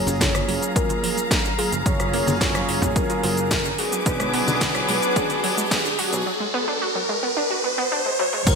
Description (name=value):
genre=nu-disco, nu disco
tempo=109 BPM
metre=4/4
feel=straight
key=unclear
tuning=A4 = 443 Hz
part: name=soft octave-layered synth lead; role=melody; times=0.0-8.6 s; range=F#4 to C#5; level=-28 LUFS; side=left 2 dB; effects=chorus, vintage 12-bit sampler grit, ping-pong delay
part: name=warm analog pad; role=accompaniment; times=0.0-8.6 s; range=F#3 to G#4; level=-27 LUFS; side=right 2 dB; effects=chorus, vintage 12-bit sampler grit, digital delay
part: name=dark chamber string section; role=sustained chords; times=0.0-8.6 s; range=F#3 to E#6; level=-28 LUFS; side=left 2 dB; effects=sidechain pumping
part: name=riser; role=sound effects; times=2.7-8.5 s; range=none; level=-26 LUFS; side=equal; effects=none
part: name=wide unison pluck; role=arpeggios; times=0.1-8.5 s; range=E#3 to F#4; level=-29 LUFS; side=right 2 dB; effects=sidechain pumping, ping-pong delay
part: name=picked electric bass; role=bass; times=0.1-8.6 s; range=F#1 to B1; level=-29 LUFS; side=equal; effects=none
part: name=house drum kit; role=drums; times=0.1-8.6 s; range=crash cymbal, hi-hat, rim click, shaker, snare drum, toms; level=-26 LUFS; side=equal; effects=overdrive, high-pass filter on perc, high-pass filter on hats, high-pass filter on snare, high-pass filter on toms, high-pass filter on cymbals, high-pass filter on room, gated reverb
part: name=congas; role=percussion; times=0.1-5.4 s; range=none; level=-31 LUFS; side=left 2 dB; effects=none
part: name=electronic kick drum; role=drums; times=0.2-8.6 s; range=none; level=-25 LUFS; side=equal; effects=overdrive
room=moderate lush hall reverb, RT60 1.8 s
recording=bright 1980s-style digital production, high-pass filter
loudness=-19 LUFS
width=side -5 dB against mid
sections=0.0-8.5 A section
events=build-up 0.0-8.5; riser 2.7-8.5; drum fill 8.2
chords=0.0 F#maj7; 3.8 Bm6